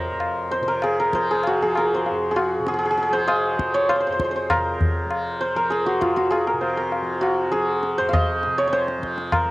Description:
indian classical, Hindustani; 99 BPM; 4/4; straight; F raga bhairavi; A4 = 439 Hz
santur; melody; 0.0-9.5 s; F4 to F5; -20 LUFS; equal; cassette tape
tanpura; drone; 0.0-9.5 s; F2 to F3; -33 LUFS; right 1 dB
tabla; percussion; 0.2-9.5 s; -25 LUFS; left 1 dB
light reverb; home recording on cassette; -19 LUFS; side -19 dB against mid
0.0-9.5 A section
speeding up 0.0-9.5

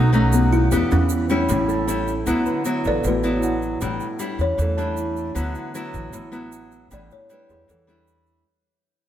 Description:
bossa nova; 155 BPM; 4/4; straight; D major; A4 = 440 Hz
kalimba; melody; 0.0-8.2 s; A3 to D5; -25 LUFS; left 1 dB
nylon-string guitar; accompaniment; 0.0-8.4 s; A2 to G4; -23 LUFS; left 1 dB
warm concert grand piano; accompaniment; 0.0-5.4 s; F#4 to A5; -36 LUFS; right 4 dB
upright bass; bass; 0.0-8.4 s; A1 to E2; -22 LUFS; equal
egg shaker; percussion; 0.1-8.5 s; -37 LUFS; right 5 dB
moderate plate reverb, RT60 2.6 s; heard from further back in the room; -19 LUFS; side -11 dB against mid
0.0-2.3 A section; 2.3-8.5 B section
fade-out 2.3-8.5; kalimba solo 2.3-8.5
0.0 B7; 0.7 Em7; 1.5 A7; 2.3 D69; 3.8 A7sus4; 5.4 D69; 6.9 A7sus4

